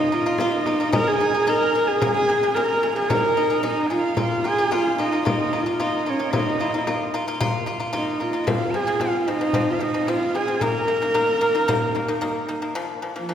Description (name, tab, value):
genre	mongolian traditional, Mongolian folk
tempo	112 BPM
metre	4/4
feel	straight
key	Bb minor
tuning	A4 = 435 Hz
part	warm horsehead fiddle	melody	0.0-13.3 s	F3 to Bb4	-22 LUFS	right 1 dB	none
part	dizi	second line	0.0-12.5 s	Db5 to Bb5	-28 LUFS	right 2 dB	none
part	pipa	arpeggios	0.0-13.3 s	Bb2 to F4	-26 LUFS	left 2 dB	none
part	frame drum	percussion	0.1-12.6 s	none	-28 LUFS	left 2 dB	none
room	wet concert hall reverb, RT60 2.1 s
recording	heard from further back in the room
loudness	-19 LUFS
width	side -9 dB against mid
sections	0.0-4.2 A section; 4.2-12.8 B section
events	none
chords	0.0 Bb5; 0.9 Ab5; 2.0 Db5; 3.1 Ab5; 4.2 Bb5; 8.5 F5; 10.6 Eb5; 12.8 Bb5